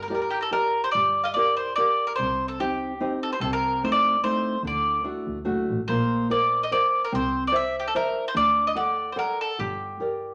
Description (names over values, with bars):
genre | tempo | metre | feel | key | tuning
italian folk, Italian serenade | 146 BPM | 3/4 | swing 54% on 8ths, rubato | G minor | A4 = 440 Hz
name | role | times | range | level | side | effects
mandolin | melody | 0.0-10.3 s | G4 to F5 | -26 LUFS | equal | none
nylon-string guitar | accompaniment | 0.0-10.3 s | C3 to F#5 | -30 LUFS | equal | none
dark double bass | bass | 0.0-10.3 s | F#1 to D2 | -36 LUFS | equal | none
room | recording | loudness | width
wet studio reverb, RT60 0.7 s | none | -24 LUFS | mono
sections
1.0-10.3 A section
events
none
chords
0.0 Gm; 2.2 Cm; 3.4 Adim/C; 4.6 D; 5.9 Bbadd9; 7.1 Cadd9; 8.3 D; 9.6 Gm